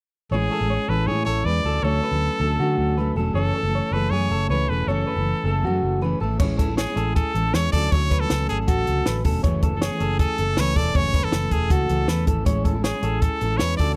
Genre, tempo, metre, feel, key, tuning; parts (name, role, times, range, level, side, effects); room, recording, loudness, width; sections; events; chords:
jangly indie pop; 158 BPM; 4/4; straight; A major; A4 = 442 Hz
brilliant trumpet; melody; 0.3-13.9 s; G#4 to D5; -28 LUFS; equal
fingerpicked steel-string acoustic guitar; accompaniment; 0.3-14.0 s; F#2 to F#4; -30 LUFS; equal
electric guitar through a small old amp; arpeggios; 0.3-14.0 s; F#4 to C#5; -31 LUFS; equal
vintage muted fingered electric bass; bass; 0.3-14.0 s; E1 to D3; -27 LUFS; equal
compact cocktail drum kit; drums; 6.4-13.9 s; crash cymbal, hi-hat, kick drum, snare drum; -25 LUFS; equal
little or no reverb; dry, close 1970s-style studio recording; -22 LUFS; mono
0.3-6.4 A section; 6.4-14.0 B section
0.3 Amaj7; 1.7 Dmaj7; 3.4 F#m7; 6.4 Amaj7; 7.7 Dmaj7; 9.4 F#m7; 12.5 Amaj7